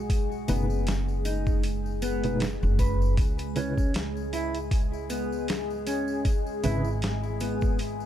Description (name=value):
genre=trip hop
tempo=78 BPM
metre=4/4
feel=swing 56% on 16ths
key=C# minor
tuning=A4 = 440 Hz
part: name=deep dark ambient pad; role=sustained chords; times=0.0-8.1 s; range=G#3 to G#4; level=-33 LUFS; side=left 1 dB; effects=chorus, built-in reverb
part: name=upright bass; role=bass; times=0.0-8.1 s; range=F#1 to C#2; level=-30 LUFS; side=equal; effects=none
part: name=dusty soul sampler-style drum kit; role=drums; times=0.1-8.0 s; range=hi-hat, kick drum, snare drum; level=-28 LUFS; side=equal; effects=none
part: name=tambourine and triangle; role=percussion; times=0.1-8.1 s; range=none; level=-47 LUFS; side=left 8 dB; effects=none
part: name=mellow tine electric piano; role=accompaniment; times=0.5-6.8 s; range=B2 to B4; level=-32 LUFS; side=right 1 dB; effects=fast stereo tremolo, tape echo
part: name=mellow electric guitar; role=arpeggios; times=0.5-7.8 s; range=B3 to B4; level=-33 LUFS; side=equal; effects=ping-pong delay
room=digital ambience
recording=dark, warm production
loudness=-25 LUFS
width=side -11 dB against mid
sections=0.0-8.1 A section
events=none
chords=0.0 B; 3.2 C#m7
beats=| 0.10 0.87 1.64 2.41 | 3.18 3.95 4.72 5.49 | 6.25 7.02 7.79